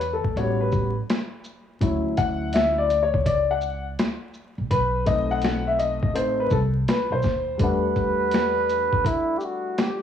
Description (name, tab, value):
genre	hip hop, jazz-hop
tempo	83 BPM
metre	4/4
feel	swing 65% on 16ths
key	E minor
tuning	A4 = 440 Hz
part	dark grand piano	accompaniment	0.0-10.0 s	F#3 to F#5	-24 LUFS	left 3 dB	cassette tape
part	upright bass	bass	0.0-8.9 s	A1 to E2	-28 LUFS	right 1 dB	none
part	boom bap sampler-style drum kit	drums	0.0-10.0 s	hi-hat, kick drum, shaker, snare drum	-26 LUFS	equal	cassette tape
part	trumpet with bucket mute	melody	7.6-10.0 s	E4 to B4	-23 LUFS	right 2 dB	cassette tape
room	light reverb, studio reverb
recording	home recording on cassette, vinyl crackle, studio ambience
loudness	-21 LUFS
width	side -9 dB against mid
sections	0.0-7.6 A section; 7.6-10.0 B section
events	grand piano solo 0.0-7.6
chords	0.4 A13; 1.8 Dmaj9; 4.7 B7b9; 7.6 Em11